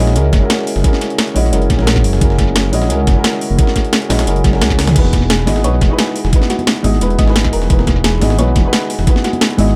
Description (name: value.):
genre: liquid drum and bass.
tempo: 175 BPM.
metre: 4/4.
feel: straight.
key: unclear.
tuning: A4 = 441 Hz.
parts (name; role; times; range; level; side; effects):
dark baby grand piano; accompaniment; 0.0-9.8 s; G#3 to D#5; -20 LUFS; equal; analog delay.
dark detuned saw bass; bass; 0.0-9.7 s; E1 to C#2; -17 LUFS; equal; none.
breakbeat sampler-style drum kit; drums; 0.1-9.7 s; hi-hat, snare drum; -28 LUFS; equal; high-pass filter on hats, high-pass filter on snare, tape echo.
drum and bass drum kit; drums; 0.2-9.7 s; crash cymbal, hi-hat, snare drum, toms; -21 LUFS; equal; tape echo.
electronic kick drum; drums; 0.3-9.1 s; none; -16 LUFS; equal; none.
congas; percussion; 5.0-9.7 s; none; -25 LUFS; equal; none.
thumb-piano-like synth pluck; arpeggios; 5.3-9.8 s; G#3 to D#5; -26 LUFS; equal; chorus, analog delay.
room: light reverb.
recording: echo-heavy mix.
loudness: -13 LUFS.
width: mono.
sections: 0.0-9.8 A section.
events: drum fill 4.8.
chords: 0.0 F#9; 5.0 Emaj9.